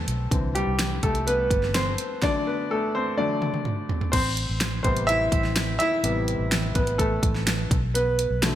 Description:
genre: piano-driven pop.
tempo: 126 BPM.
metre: 4/4.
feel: straight.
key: unclear.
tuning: A4 = 437 Hz.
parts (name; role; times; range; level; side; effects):
clear grand piano; accompaniment; 0.0-8.6 s; C3 to E5; -25 LUFS; equal; none.
vintage muted fingered electric bass; bass; 0.0-8.6 s; G1 to C2; -27 LUFS; equal; none.
pop drum kit; drums; 0.1-8.5 s; crash cymbal, hi-hat, kick drum, snare drum, toms; -26 LUFS; equal; none.
room: moderate plate reverb, RT60 2.5 s.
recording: bright 1980s-style digital production.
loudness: -22 LUFS.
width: side -12 dB against mid.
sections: 0.0-4.1 A section; 4.1-8.6 B section.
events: grand piano solo 0.0-4.1, 4.1-8.6; drum fill 3.2-4.1.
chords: 0.3 Cadd9; 2.2 D; 4.1 Am7; 7.7 Bm7.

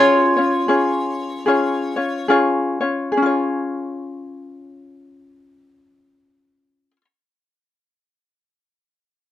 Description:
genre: Hawaiian.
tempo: 66-81 BPM.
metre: 4/4.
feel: swing 61% on 8ths.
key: Db major.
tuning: A4 = 440 Hz.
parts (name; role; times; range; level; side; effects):
metal-body resonator slide guitar; melody; 0.0-2.3 s; F4 to Db5; -18 LUFS; right 1 dB; plate reverb.
ukulele; accompaniment; 0.0-7.0 s; Db4 to Db5; -18 LUFS; left 2 dB; none.
room: moderate studio reverb, RT60 0.6 s.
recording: close, detailed microphones.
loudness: -17 LUFS.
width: side -12 dB against mid.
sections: 0.0-3.2 A section; 3.2-6.8 B section.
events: slowing down 0.0-3.2.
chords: 0.0 Db.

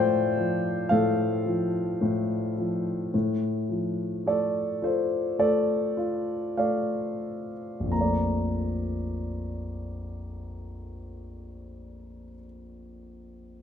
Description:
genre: classical, lyrical solo piano.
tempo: 42-58 BPM.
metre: 4/4.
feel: rubato.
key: Bb major.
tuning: A4 = 439 Hz.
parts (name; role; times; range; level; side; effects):
dark concert grand piano; solo; 0.0-13.6 s; Bb1 to Bb5; -26 LUFS; left 1 dB; none.
room: wet recital hall reverb, RT60 1.3 s.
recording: minimal, uncompressed stereo recording.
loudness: -25 LUFS.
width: side -8 dB against mid.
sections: 0.0-3.1 A section; 3.1-7.9 B section; 7.9-13.4 C section.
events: slowing down 0.0-7.9.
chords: 0.0 F69/A; 3.1 Dm/A; 7.9 Bbmaj7.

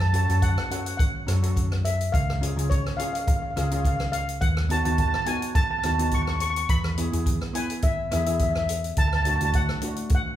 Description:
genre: calypso.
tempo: 105 BPM.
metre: 4/4.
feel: swing 54% on 16ths.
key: unclear.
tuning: A4 = 440 Hz.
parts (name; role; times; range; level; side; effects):
steel pan; melody; 0.0-10.4 s; C#5 to C#6; -27 LUFS; equal; none.
hollow-body short-scale fingered electric bass; bass; 0.0-9.7 s; C#2 to F#2; -26 LUFS; equal; none.
open jazz drum kit; drums; 0.0-10.2 s; hi-hat, kick drum, rim click; -26 LUFS; equal; none.
steel pan; accompaniment; 0.1-10.2 s; A3 to B4; -32 LUFS; left 1 dB; none.
room: moderate large studio reverb, RT60 1.3 s.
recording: band playing live in one room.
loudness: -22 LUFS.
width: side -12 dB against mid.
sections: 0.0-10.4 A section.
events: none.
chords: 0.0 F#m; 2.1 C#; 4.4 B/D#; 6.7 E; 9.0 D.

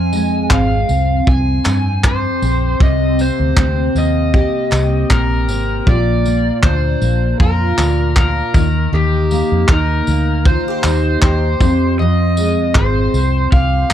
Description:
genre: acoustic pop.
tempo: 78 BPM.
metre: 4/4.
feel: swing 55% on 16ths.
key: unclear.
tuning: A4 = 440 Hz.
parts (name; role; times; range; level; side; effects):
overdriven slide guitar; melody; 0.0-13.9 s; G4 to Ab5; -20 LUFS; left 2 dB; digital delay.
picked steel-string acoustic guitar; accompaniment; 0.0-13.9 s; F2 to G4; -18 LUFS; equal; double-tracked left and right.
vintage muted fingered electric bass; bass; 0.0-13.9 s; Ab1 to G2; -16 LUFS; equal; none.
loose indie drum kit; drums; 0.1-13.9 s; handclaps, kick drum, tambourine; -15 LUFS; equal; none.
group handclap; percussion; 0.5-5.3 s; none; -31 LUFS; left 5 dB; none.
room: light reverb.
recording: dark, warm production.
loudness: -12 LUFS.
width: side -10 dB against mid.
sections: 0.0-5.9 A section; 5.9-13.9 A section.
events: none.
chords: 0.0 Fmadd9; 2.8 Cm7; 5.9 Bb; 8.5 Eb; 11.6 Fmadd9.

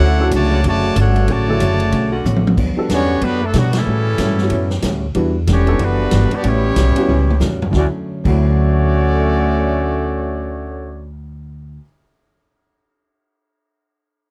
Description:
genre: jazz, big band swing.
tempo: 186 BPM.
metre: 4/4.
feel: swing 61% on 8ths.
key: D major.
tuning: A4 = 440 Hz.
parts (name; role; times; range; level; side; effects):
bright trumpet section; melody; 0.0-11.1 s; F#3 to A5; -25 LUFS; equal; none.
dark trombone section; second line; 0.0-11.1 s; B2 to F#4; -23 LUFS; equal; none.
hollow-body jazz guitar; accompaniment; 0.0-11.8 s; G2 to F#4; -27 LUFS; equal; none.
upright bass; bass; 0.0-11.8 s; E1 to B2; -20 LUFS; equal; none.
warm upright piano; accompaniment; 0.2-11.8 s; D2 to A4; -24 LUFS; equal; none.
swinging big-band drum kit; drums; 0.3-8.3 s; crash cymbal, hi-hat, kick drum, ride cymbal, snare drum, toms; -25 LUFS; equal; none.
warm saxophone section; sustained chords; 0.5-2.5 s; D3 to F#4; -28 LUFS; equal; none.
room: little or no reverb.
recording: none.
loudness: -16 LUFS.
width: mono.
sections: 0.0-2.6 A section; 2.6-7.7 B section; 7.7-10.3 C section.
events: drum fill 2.2-2.6, 7.1-7.7; band accent 3.7.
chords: 0.0 Dmaj7; 2.6 A13; 5.2 Em9; 6.4 A13; 7.7 Dmaj7.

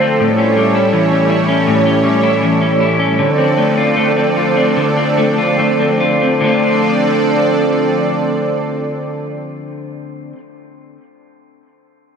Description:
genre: dream pop.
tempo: 70-82 BPM.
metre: 4/4.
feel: straight.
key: D minor.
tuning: A4 = 441 Hz.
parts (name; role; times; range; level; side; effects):
lush unison pad; sustained chords; 0.0-10.3 s; F3 to D5; -15 LUFS; right 3 dB; chorus.
electric guitar at the edge of break-up; arpeggios; 0.0-10.4 s; A2 to F4; -15 LUFS; left 3 dB; lush chorus, dub echo.
room: wet spring reverb, RT60 2.3 s.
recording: echo-heavy mix.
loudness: -12 LUFS.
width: side -6 dB against mid.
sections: 0.0-6.4 A section; 6.4-9.9 B section.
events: slowing down 0.2-6.4.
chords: 0.2 A7; 3.2 Dm7.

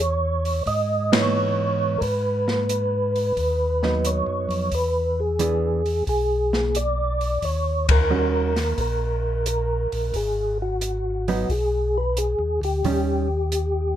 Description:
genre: soul jazz organ trio.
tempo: 89 BPM.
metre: 4/4.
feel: swing 68% on 8ths.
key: G# minor.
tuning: A4 = 440 Hz.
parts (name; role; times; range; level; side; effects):
percussive tonewheel organ; melody; 0.0-14.0 s; F#4 to D#5; -24 LUFS; equal; slow rotary speaker, chorus vibrato.
mellow tonewheel organ; bass; 0.0-13.9 s; G#1 to G#2; -25 LUFS; equal; slow rotary speaker.
open jazz drum kit; drums; 0.5-13.7 s; hi-hat, kick drum, ride cymbal, snare drum; -26 LUFS; equal; none.
hollow-body jazz guitar; accompaniment; 1.1-13.3 s; D#3 to G#4; -25 LUFS; right 5 dB; none.
room: light reverb.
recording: minimal, uncompressed stereo recording.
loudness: -20 LUFS.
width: side -11 dB against mid.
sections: 0.0-14.0 A section.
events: band accent 1.0-1.3, 7.8-8.1.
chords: 0.0 C#m9; 2.0 G#m7; 4.7 E7; 7.4 D#7#9; 10.1 G#m7; 12.8 D#7.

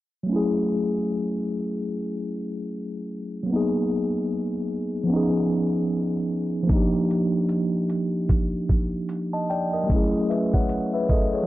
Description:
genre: lo-fi hip hop.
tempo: 75 BPM.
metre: 4/4.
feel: swing 58% on 16ths.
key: unclear.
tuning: A4 = 440 Hz.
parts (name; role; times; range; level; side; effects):
mellow tine electric piano; accompaniment; 0.2-11.5 s; E#3 to A5; -23 LUFS; equal; medium stereo tremolo.
boom bap sampler-style drum kit; drums; 6.7-11.3 s; hi-hat, kick drum; -22 LUFS; equal; none.
room: moderate plate reverb, RT60 2.8 s.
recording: dark, warm production, low-pass filter.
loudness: -22 LUFS.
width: side -16 dB against mid.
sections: 0.3-11.5 A section.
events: filter sweep 0.3-11.5.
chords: 0.3 F#m9; 3.5 G#m7; 5.1 C#9; 6.7 D#maj7; 9.9 F#m7.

